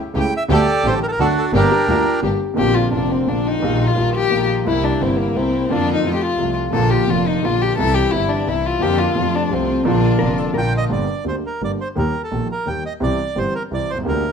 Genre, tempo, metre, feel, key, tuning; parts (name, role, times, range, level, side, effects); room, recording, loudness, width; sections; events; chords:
tango; 173 BPM; 3/4; rubato; Bb major, G minor from 10.9 s; A4 = 441 Hz
warm concert grand piano; accompaniment; 0.1-14.2 s; F1 to G4; -20 LUFS; right 1 dB
clear symphonic string section; stabs; 0.1-10.9 s; G3 to G4; -30 LUFS; left 1 dB
bandoneon; melody; 0.2-2.2, 10.6-14.3 s; D4 to G5; -20 LUFS; right 2 dB
clear double bass; bass; 0.2-14.2 s; F1 to F2; -23 LUFS; right 1 dB
hollow-body jazz guitar; second line; 1.7-2.6, 10.2-10.9 s; F4 to Bb4; -24 LUFS; left 6 dB
warm violin; second line; 2.6-10.5 s; Bb3 to A4; -20 LUFS; left 6 dB
moderate studio reverb, RT60 0.9 s; minimal, uncompressed stereo recording; -16 LUFS; side -6 dB against mid
0.0-2.6 A section; 2.6-10.9 B section; 10.9-14.3 A section
violin solo 2.6-10.9
0.5 Dsus4; 1.2 D; 1.5 Gm; 2.6 Bbadd9; 3.6 Ebadd9/Bb; 4.7 C7; 5.7 Bb/F; 6.0 F; 6.7 Bb; 7.8 C; 8.8 Bb/F; 9.2 F; 9.9 Bb; 10.9 Gm; 12.0 Eb; 13.0 C